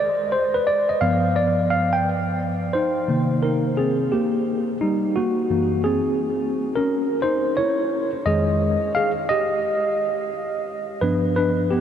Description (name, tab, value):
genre	hip hop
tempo	87 BPM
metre	4/4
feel	swing 64% on 16ths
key	C minor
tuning	A4 = 440 Hz
part	mellow tine electric piano	solo	0.0-11.8 s	F2 to G5	-19 LUFS	equal	medium stereo tremolo, analog delay
room	wet huge ambient reverb, RT60 7.4 s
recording	dreamy mix soaked in reverb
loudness	-19 LUFS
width	side -9 dB against mid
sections	0.0-2.7 A section; 2.7-11.8 B section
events	tine electric piano solo 0.0-2.7, 2.7-11.8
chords	0.0 G7; 2.7 Cm7; 5.5 F#9; 8.3 Fm7; 11.0 G7